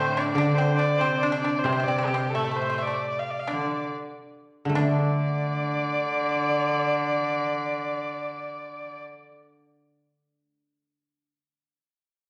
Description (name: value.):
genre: chinese traditional.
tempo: 66-99 BPM.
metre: 4/4.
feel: rubato.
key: unclear.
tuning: A4 = 439 Hz.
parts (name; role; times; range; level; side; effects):
rich erhu; melody; 0.0-9.0 s; G4 to F5; -30 LUFS; equal; none.
pipa; second line; 0.0-9.4 s; A3 to D4; -33 LUFS; equal; none.
warm cello; second line; 0.0-9.0 s; A2 to D3; -34 LUFS; equal; none.
guzheng; accompaniment; 0.0-11.3 s; C3 to D4; -30 LUFS; equal; none.
room: wet recital hall reverb, RT60 1.3 s.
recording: none.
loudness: -26 LUFS.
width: mono.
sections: 0.0-4.8 A section; 4.8-8.2 B section.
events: slowing down 0.0-4.8.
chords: none.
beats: 0.38 1.01 | 1.66 2.34 3.08 3.90 | 4.78 5.67 6.53 7.38.